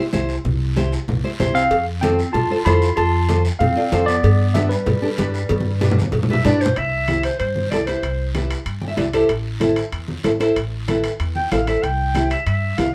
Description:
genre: latin, cumbia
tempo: 190 BPM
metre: 4/4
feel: straight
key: C major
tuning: A4 = 441 Hz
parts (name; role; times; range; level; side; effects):
- nylon-string guitar; accompaniment; 0.0-12.8 s; D4 to G5; -23 LUFS; equal; none
- upright bass; bass; 0.1-12.9 s; A1 to G2; -24 LUFS; equal; none
- congas; percussion; 0.1-12.9 s; none; -27 LUFS; equal; none
- guiro; percussion; 0.1-12.9 s; none; -38 LUFS; equal; none
- mellow tine electric piano; melody; 1.5-6.4 s; B4 to B5; -25 LUFS; equal; none
- clear clarinet; second line; 1.5-8.3, 11.4-12.9 s; G3 to G5; -26 LUFS; equal; none
- cowbell and timbales; percussion; 1.7-12.9 s; none; -31 LUFS; equal; none
room: moderate studio ambience, RT60 0.5 s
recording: none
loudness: -19 LUFS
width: mono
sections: 0.0-6.8 A section; 6.8-12.9 B section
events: drum fill 5.5-6.8; clarinet solo 6.8-12.9; nylon-string guitar fill 8.7-9.3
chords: 0.0 C; 1.7 F; 4.2 G; 6.8 C; 9.3 Am; 11.8 C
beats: 0.14 | 0.45 0.77 1.08 1.40 | 1.71 2.03 2.34 2.66 | 2.97 3.29 3.60 3.92 | 4.24 4.55 4.87 5.18 | 5.50 5.82 6.13 6.45 | 6.76 7.08 7.40 7.71 | 8.03 8.35 8.66 8.98 | 9.30 9.61 9.93 10.25 | 10.56 10.88 11.20 11.51 | 11.83 12.15 12.46 12.78

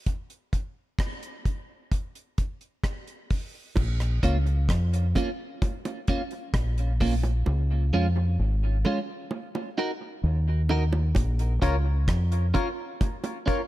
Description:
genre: dub reggae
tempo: 65 BPM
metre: 4/4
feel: straight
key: Bb minor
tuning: A4 = 441 Hz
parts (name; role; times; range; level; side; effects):
- deep reggae drum kit; drums; 0.1-13.7 s; crash cymbal, hi-hat, kick drum, rim click; -27 LUFS; equal; none
- deep dub fingered electric bass; bass; 3.8-12.5 s; Ab1 to F2; -23 LUFS; equal; none
- bongos; percussion; 3.8-13.5 s; none; -36 LUFS; right 4 dB; dub echo
- clean electric guitar; accompaniment; 4.2-13.6 s; Ab3 to Bb4; -31 LUFS; right 2 dB; lush chorus, high-pass filter, dub echo
- percussive organ stab; stabs; 11.6-13.6 s; F4 to Db5; -32 LUFS; left 6 dB; chorus, high-pass filter, dub echo
room: studio ambience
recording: echo-heavy mix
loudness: -24 LUFS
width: side -16 dB against mid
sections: 0.0-3.8 A section; 3.8-13.7 B section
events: break 0.0-3.8; part muted 7.5-11.2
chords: 0.0 N.C.; 3.8 Bbm; 7.5 Db; 9.3 Ebm; 11.2 Bbm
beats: | 0.07 0.99 1.92 2.84 | 3.77 4.69 5.62 6.54 | 7.46 8.39 9.31 10.24 | 11.16 12.09 13.01

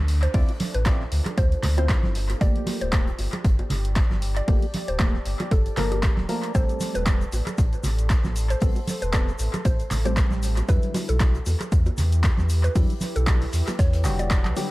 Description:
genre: deep house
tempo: 116 BPM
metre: 4/4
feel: swing 56% on 16ths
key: unclear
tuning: A4 = 440 Hz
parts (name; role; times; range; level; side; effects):
- sub bass with octave; bass; 0.0-14.5 s; D1 to E2; -24 LUFS; equal; none
- downlifter; sound effects; 0.0-2.4 s; none; -48 LUFS; equal; none
- deep dark ambient pad; texture; 0.0-14.7 s; D4 to C6; -39 LUFS; left 1 dB; chorus, built-in reverb, sidechain pumping
- huge arena drum kit; drums; 0.1-14.7 s; hi-hat, snare drum; -44 LUFS; left 3 dB; none
- punchy analog drum machine; drums; 0.1-14.7 s; handclaps, hi-hat, rim click; -32 LUFS; equal; overdrive, small room ambience, dub echo
- mallet-like synth pluck; melody; 0.2-14.7 s; G4 to D5; -34 LUFS; equal; chorus, dub echo
- percussive organ stab; stabs; 0.3-14.7 s; D3 to D5; -31 LUFS; equal; chorus, phaser, sidechain pumping, tape echo
- electronic kick drum; drums; 0.3-14.4 s; none; -21 LUFS; equal; overdrive, small room ambience
- bongos and congas; percussion; 0.5-14.7 s; none; -32 LUFS; right 2 dB; dub echo
- tube shaker; percussion; 6.5-14.7 s; none; -41 LUFS; left 4 dB; none
room: studio reverb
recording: echo-heavy mix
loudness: -20 LUFS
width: side -19 dB against mid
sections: 0.0-14.7 A section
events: drum fill 14.4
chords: 0.0 Dm9; 2.2 Gm9; 6.5 Am9; 10.7 Em9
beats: | 0.34 0.86 1.38 1.89 | 2.41 2.93 3.44 3.96 | 4.48 5.00 5.51 6.03 | 6.55 7.07 7.58 8.10 | 8.62 9.13 9.65 10.17 | 10.69 11.20 11.72 12.24 | 12.76 13.27 13.79 14.31

